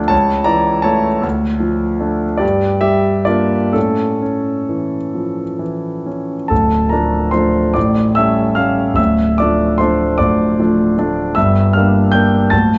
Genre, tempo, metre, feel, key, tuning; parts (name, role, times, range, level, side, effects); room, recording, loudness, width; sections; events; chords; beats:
classical, romantic character piece for solo piano; 42-56 BPM (dotted quarters); 6/8; rubato; D minor; A4 = 440 Hz
clear concert grand piano; solo; 0.0-12.8 s; D1 to A6; -15 LUFS; equal
moderate concert hall reverb, RT60 2.3 s; nothing above 7.6 kHz; -15 LUFS; mono
0.0-6.5 A section; 6.5-12.8 B section
0.1 A/C#; 1.2 Dm; 2.4 Gm; 3.7 A; 6.5 Dm; 7.8 A7; 9.0 Dm; 11.4 Gm7
0.12 | 1.24 2.42 | 3.75 5.14 | 6.50 7.75 | 8.98 10.20 | 11.37 12.52